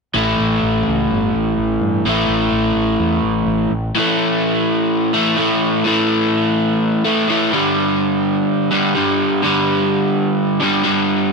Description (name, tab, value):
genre	rock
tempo	126 BPM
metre	4/4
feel	straight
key	unclear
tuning	A4 = 441 Hz
part	overdriven electric guitar	riff	0.1-11.3 s	G2 to A3	-14 LUFS	equal	none
part	growling fingered electric bass	bass	0.1-3.9 s	G1 to G2	-22 LUFS	equal	overdrive
room	moderate plate reverb, RT60 2.2 s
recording	none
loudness	-14 LUFS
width	side -4 dB against mid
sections	0.2-4.0 A section; 4.0-11.3 B section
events	none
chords	0.2 A5; 3.7 N.C.; 4.0 A5; 7.5 G5